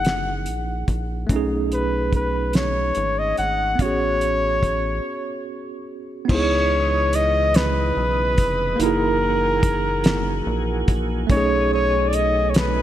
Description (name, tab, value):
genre	slow six-eight R&B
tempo	48 BPM (dotted quarters)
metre	6/8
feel	straight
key	C# minor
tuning	A4 = 440 Hz
part	warm flugelhorn	melody	0.0-12.8 s	A#4 to F#5	-22 LUFS	left 1 dB	none
part	mellow tine electric piano	accompaniment	0.0-12.8 s	A3 to G#4	-26 LUFS	right 3 dB	medium stereo tremolo
part	rubbery square bass	bass	0.0-12.8 s	E#1 to C#2	-25 LUFS	equal	none
part	cloth-damped thuddy drum kit	drums	0.0-12.7 s	crash cymbal, hi-hat, kick drum, snare drum	-22 LUFS	equal	gated reverb
part	tonewheel organ	sustained chords	6.3-12.8 s	C#3 to D#5	-29 LUFS	equal	chorus vibrato, slow rotary speaker
room	light reverb, small room reverb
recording	bright 1980s-style digital production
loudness	-18 LUFS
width	side -12 dB against mid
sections	0.0-6.3 A section; 6.3-12.8 B section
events	break 5.0-6.3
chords	0.0 F#13; 1.3 B13; 3.8 Amaj13; 6.3 C#m9; 8.8 F#13; 11.3 B13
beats	0.04 | 1.29 2.54 | 3.79 5.04 | 6.29 7.54 | 8.79 10.04 | 11.29 12.54